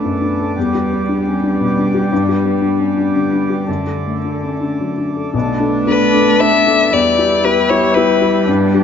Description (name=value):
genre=neoclassical piano and strings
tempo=107-119 BPM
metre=3/4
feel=rubato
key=unclear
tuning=A4 = 438 Hz
part: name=warm cello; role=second line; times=0.0-8.8 s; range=D3 to A3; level=-20 LUFS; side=right 4 dB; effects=none
part: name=felt-muted upright piano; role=accompaniment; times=0.0-8.8 s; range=B1 to A4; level=-17 LUFS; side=left 5 dB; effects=none
part: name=hand-pumped harmonium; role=sustained chords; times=0.0-8.8 s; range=A3 to E5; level=-23 LUFS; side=right 1 dB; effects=none
part: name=dark viola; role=accompaniment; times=5.3-8.8 s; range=D4 to E4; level=-21 LUFS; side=right 3 dB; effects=none
part: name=warm violin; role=melody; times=5.9-8.5 s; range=B4 to E5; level=-13 LUFS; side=left 6 dB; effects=none
room=moderate concert hall reverb, RT60 2.0 s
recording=nothing above 7.6 kHz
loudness=-13 LUFS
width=side -8 dB against mid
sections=0.0-5.3 A section; 5.3-8.8 B section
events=none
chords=0.0 Bm7; 0.6 Em7; 2.1 G; 3.7 D/F#; 5.3 Bm7; 6.9 Em7